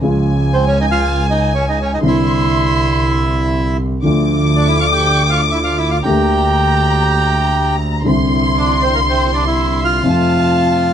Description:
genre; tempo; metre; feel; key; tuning
tango; 120 BPM; 4/4; rubato; unclear; A4 = 440 Hz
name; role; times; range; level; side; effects
dark studio violin section; second line; 0.0-10.9 s; Ab5 to D6; -20 LUFS; left 2 dB; none
dark concert grand piano; accompaniment; 0.0-10.9 s; C2 to G4; -17 LUFS; equal; none
clear double bass; bass; 0.0-10.9 s; C2 to F2; -19 LUFS; right 1 dB; none
bandoneon; melody; 0.5-10.9 s; Bb3 to G5; -17 LUFS; right 2 dB; none
dark chamber string section; stabs; 4.0-10.9 s; A3 to A4; -25 LUFS; left 1 dB; none
room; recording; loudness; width
moderate club reverb, RT60 0.8 s; nothing above 10.6 kHz; -12 LUFS; side -9 dB against mid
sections
0.0-10.9 A section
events
none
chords
0.0 Db; 2.0 Cadd9; 4.0 Dm; 6.0 Gmadd9/D; 8.1 Cadd9; 10.1 F

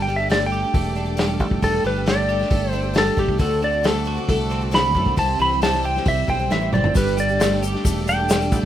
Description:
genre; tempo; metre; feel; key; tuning
folk rock and heartland rock; 135 BPM; 4/4; straight; unclear; A4 = 440 Hz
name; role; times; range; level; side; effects
clean lap steel guitar; melody; 0.0-8.7 s; G4 to B5; -21 LUFS; equal; none
picked twelve-string acoustic guitar; accompaniment; 0.0-8.7 s; C3 to C5; -30 LUFS; left 8 dB; none
warm symphonic string section; sustained chords; 0.0-8.7 s; A4 to E6; -36 LUFS; left 4 dB; none
twelve-string electric guitar; riff; 0.0-8.7 s; C3 to G4; -26 LUFS; right 7 dB; none
fingered electric bass; bass; 0.0-8.6 s; E1 to F#2; -25 LUFS; equal; none
vintage drum kit; drums; 0.3-8.6 s; hi-hat, kick drum, snare drum, toms; -23 LUFS; equal; none
mandolin; second line; 3.9-4.6 s; A4; -26 LUFS; left 2 dB; none
bright grand piano; accompaniment; 6.9-8.6 s; D4 to C5; -35 LUFS; left 5 dB; none
tube shaker; percussion; 6.9-8.6 s; none; -34 LUFS; left 9 dB; none
room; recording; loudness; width
light reverb; rough home demo mix; -17 LUFS; side -11 dB against mid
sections
0.0-8.7 A section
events
electric slide guitar solo 0.0-8.7; drum fill 6.5-7.0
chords
0.0 Gsus2; 3.4 D7; 5.2 C; 7.0 Gsus2

